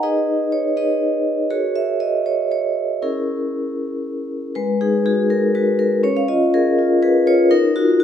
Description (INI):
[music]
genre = classical, contemporary piece for solo vibraphone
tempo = 81 BPM (dotted quarters)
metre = 6/8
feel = straight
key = G# minor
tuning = A4 = 438 Hz
[part]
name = vibraphone with medium mallets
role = solo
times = 0.0-8.0 s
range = G#3 to E#5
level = -16 LUFS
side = equal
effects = none
[sound]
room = wet recital hall reverb, RT60 1.4 s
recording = minimal, uncompressed stereo recording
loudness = -16 LUFS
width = side -9 dB against mid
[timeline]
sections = 0.0-4.6 A section; 4.6-8.0 B section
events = none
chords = 0.0 G#m/D#; 1.5 F#add9; 3.0 C#m6; 4.6 G#5; 6.0 C#; 7.5 D#madd9